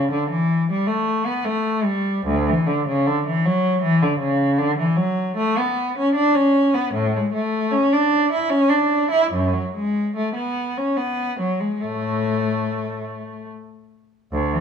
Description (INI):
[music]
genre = classical, baroque-style suite movement for unaccompanied cello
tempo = 70-79 BPM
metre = 3/4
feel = rubato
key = D major, A major from 4.6 s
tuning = A4 = 441 Hz
[part]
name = rich cello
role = solo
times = 0.0-14.6 s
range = D2 to E4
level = -18 LUFS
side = equal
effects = none
[sound]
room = wet stone room reverb, RT60 1.4 s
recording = dark, warm production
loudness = -18 LUFS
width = side -7 dB against mid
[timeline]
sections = 0.0-14.3 A section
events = none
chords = none